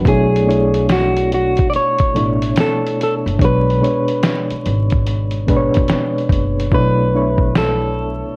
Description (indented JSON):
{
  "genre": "lo-fi hip hop",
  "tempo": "72 BPM",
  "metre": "4/4",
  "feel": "swing 65% on 16ths",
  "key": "B dorian",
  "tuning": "A4 = 440 Hz",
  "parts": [
    { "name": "soft electric-piano-like synth keys", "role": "accompaniment", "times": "0.0-8.4 s", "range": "B2 to C#5", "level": "-22 LUFS", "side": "equal", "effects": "chorus, tremolo, cassette tape, low-pass filter" },
    { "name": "electric guitar at the edge of break-up", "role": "melody", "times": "0.1-8.4 s", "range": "F#4 to D5", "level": "-21 LUFS", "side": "equal", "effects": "spring reverb, low-pass filter, analog delay" },
    { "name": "upright bass", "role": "bass", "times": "0.1-8.2 s", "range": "F#1 to B1", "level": "-22 LUFS", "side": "equal", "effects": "none" },
    { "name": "lo-fi sampler-style drum kit", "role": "drums", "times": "0.1-7.8 s", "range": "hi-hat, kick drum, snare drum", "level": "-21 LUFS", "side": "equal", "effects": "none" }
  ],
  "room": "light reverb",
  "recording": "worn, warbling old tape, cassette tape, vinyl crackle, warbly pitch drift",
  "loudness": "-16 LUFS",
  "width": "mono",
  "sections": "0.0-6.7 A section; 6.7-8.4 B section",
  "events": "hi-hats muted 6.7-8.4",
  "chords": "0.1 Bm11; 3.4 Bm69; 6.7 Bm11"
}